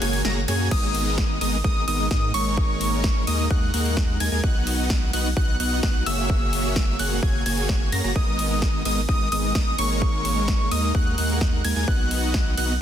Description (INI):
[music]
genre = EDM, festival progressive house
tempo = 129 BPM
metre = 4/4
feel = straight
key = G# minor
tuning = A4 = 440 Hz
[part]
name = dark symphonic string section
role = sustained chords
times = 0.0-0.7 s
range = C#3 to F#4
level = -39 LUFS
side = equal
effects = none
[part]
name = plucky unison lead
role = arpeggios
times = 0.0-12.7 s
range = C#6 to A#6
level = -28 LUFS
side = equal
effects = sidechain pumping, ping-pong delay
[part]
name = dense compressed supersaw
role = riff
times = 0.0-12.7 s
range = G#3 to A#5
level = -26 LUFS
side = equal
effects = sidechain pumping, ping-pong delay
[part]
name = saturated sub bass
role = bass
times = 0.0-12.8 s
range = F#1 to G#2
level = -27 LUFS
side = equal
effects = sidechain pumping
[part]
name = big-room dance drum kit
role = drums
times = 0.0-12.7 s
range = crash cymbal, hi-hat, ride cymbal, snare drum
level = -30 LUFS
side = equal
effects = studio reverb
[part]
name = electronic kick drum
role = drums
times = 0.7-12.4 s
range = none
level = -23 LUFS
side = equal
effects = studio reverb
[sound]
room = light reverb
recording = dense, heavily limited modern master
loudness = -20 LUFS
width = side -10 dB against mid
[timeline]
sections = 0.7-12.8 A section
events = break 0.0-0.7; drop 0.7-12.8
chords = 0.0 F#add9; 0.7 G#madd9; 2.6 D#sus4; 4.4 B; 6.3 F#add9; 8.2 G#madd9; 10.0 D#sus4; 11.9 B